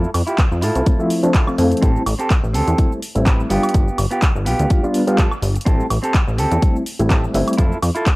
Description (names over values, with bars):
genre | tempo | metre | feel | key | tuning
filtered disco house | 125 BPM | 4/4 | swing 55% on 16ths | A minor | A4 = 440 Hz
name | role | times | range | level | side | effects
overdriven reed electric piano | accompaniment | 0.0-7.7 s | F3 to F4 | -19 LUFS | equal | fast tremolo, phaser, sidechain pumping, low-pass filter
clean electric guitar | riff | 0.0-8.1 s | B3 to B4 | -23 LUFS | right 1 dB | sidechain pumping, low-pass filter
plucky analog bass | bass | 0.0-7.9 s | G1 to A2 | -19 LUFS | equal | sidechain pumping, low-pass filter
punchy analog drum machine | drums | 0.0-8.2 s | cabasa, handclaps, hi-hat, woodblock | -25 LUFS | right 1 dB | none
electronic kick drum | drums | 0.4-8.2 s | none | -16 LUFS | equal | none
room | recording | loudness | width
little or no reverb | dry, gritty hardware recording | -15 LUFS | side -22 dB against mid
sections
0.0-8.2 A section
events
filter sweep 0.0-8.2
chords
0.0 Fmaj7; 1.8 Am7; 3.5 G7; 5.7 Am7; 7.6 Fmaj7